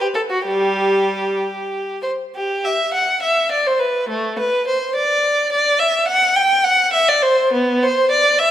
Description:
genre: classical, baroque-style suite movement for unaccompanied violin.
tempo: 59-72 BPM (dotted quarters).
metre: 6/8.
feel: rubato.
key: G major.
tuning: A4 = 440 Hz.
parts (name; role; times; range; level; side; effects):
rich violin; solo; 0.0-8.5 s; G3 to G5; -15 LUFS; equal; none.
room: wet recital hall reverb, RT60 1.7 s.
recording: minimal, uncompressed stereo recording.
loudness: -15 LUFS.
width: side -11 dB against mid.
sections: 0.0-2.4 A section; 2.4-8.5 B section.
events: none.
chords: none.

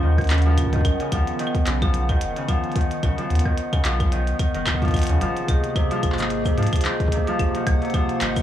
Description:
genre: IDM.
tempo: 110 BPM.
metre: 4/4.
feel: swing 56% on 16ths.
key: unclear.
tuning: A4 = 439 Hz.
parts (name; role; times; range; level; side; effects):
warbly tape-like pad; sustained chords; 0.0-8.4 s; C3 to Gb5; -27 LUFS; right 1 dB; chorus, built-in reverb, vintage 12-bit sampler grit.
Celtic harp; arpeggios; 0.0-8.4 s; C3 to D#4; -26 LUFS; left 1 dB; tape echo.
warm sub bass; bass; 0.0-8.4 s; F#1 to Ab2; -22 LUFS; equal; none.
electronic kick drum; drums; 0.2-8.4 s; none; -22 LUFS; equal; studio ambience.
glitchy drum kit; drums; 0.2-8.4 s; cabasa, claves, handclaps, hi-hat; -29 LUFS; equal; studio ambience.
room: little or no reverb.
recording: dry, gritty hardware recording, transformer saturation, small room ambience.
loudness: -19 LUFS.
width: side -11 dB against mid.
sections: 0.0-8.4 A section.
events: none.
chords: 0.0 Ebm7; 0.8 B; 5.2 Abadd9.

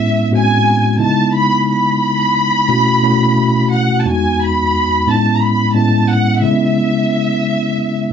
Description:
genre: soul.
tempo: 88 BPM.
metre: 4/4.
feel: straight.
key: C# minor.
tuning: A4 = 441 Hz.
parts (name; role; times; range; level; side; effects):
warm studio violin section; melody; 0.0-8.1 s; E5 to B5; -16 LUFS; right 1 dB; none.
mellow tine electric piano; accompaniment; 0.0-8.1 s; E2 to F#4; -14 LUFS; left 1 dB; medium stereo tremolo.
room: wet studio reverb, RT60 0.5 s.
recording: nothing above 7.8 kHz.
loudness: -12 LUFS.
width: side -8 dB against mid.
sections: 0.0-8.1 A section.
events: none.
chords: 0.0 Amaj9; 1.0 C#m9; 2.7 B9sus4; 4.1 Emaj7; 5.1 Amaj9; 6.4 C#m7.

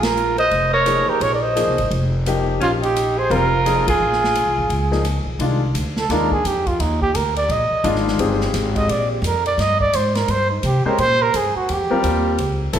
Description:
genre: modal jazz.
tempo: 172 BPM.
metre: 4/4.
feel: swing 62% on 8ths.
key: C minor.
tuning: A4 = 441 Hz.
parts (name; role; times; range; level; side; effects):
breathy trumpet; melody; 0.0-12.7 s; Eb4 to Eb5; -19 LUFS; right 3 dB; none.
growling alto saxophone; second line; 0.0-5.2 s; Db4 to C5; -24 LUFS; left 2 dB; none.
upright bass; bass; 0.0-12.8 s; F1 to C3; -22 LUFS; equal; none.
swinging big-band drum kit; drums; 0.0-12.8 s; hi-hat, kick drum, ride cymbal, rim click, snare drum; -28 LUFS; equal; none.
warm concert grand piano; accompaniment; 0.9-12.8 s; Eb3 to C5; -23 LUFS; left 4 dB; none.
room: wet recital hall reverb, RT60 1.6 s.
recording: recorded in a church or concert hall.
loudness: -16 LUFS.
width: side -9 dB against mid.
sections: 0.0-5.4 A section; 5.4-12.8 B section.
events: band accent 0.0, 3.8; trumpet solo 5.4-12.8.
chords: 0.0 Bb7sus4; 5.4 Cmadd9; 11.0 Bbmadd9.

